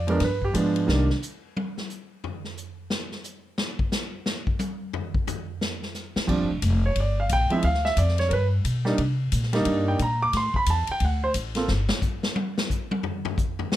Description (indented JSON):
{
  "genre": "jazz piano trio",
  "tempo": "178 BPM",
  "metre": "4/4",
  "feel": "swing 62% on 8ths",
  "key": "unclear",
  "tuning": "A4 = 439 Hz",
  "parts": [
    { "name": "warm grand piano", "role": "melody", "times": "0.0-1.1, 6.3-11.7 s", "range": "Eb3 to D6", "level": "-24 LUFS", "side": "right 2 dB", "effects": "none" },
    { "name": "upright bass", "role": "bass", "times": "0.0-1.1, 6.2-11.9 s", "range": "F1 to C3", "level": "-24 LUFS", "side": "left 1 dB", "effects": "none" },
    { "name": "swinging big-band drum kit", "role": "drums", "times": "0.1-13.8 s", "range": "crash cymbal, hi-hat, kick drum, ride cymbal, snare drum, toms", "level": "-29 LUFS", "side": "left 2 dB", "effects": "none" }
  ],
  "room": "light reverb",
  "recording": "close, detailed microphones",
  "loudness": "-23 LUFS",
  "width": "side -13 dB against mid",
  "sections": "0.0-6.3 A section; 6.3-13.8 A section",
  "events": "grand piano solo 0.0-13.8; drum solo 0.9-6.3, 11.7-13.8",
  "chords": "0.2 G7b9; 0.9 N.C.; 6.3 Bb6; 7.6 Dm; 8.3 G; 9.0 Cm9; 10.3 A5; 11.0 D5; 11.7 N.C."
}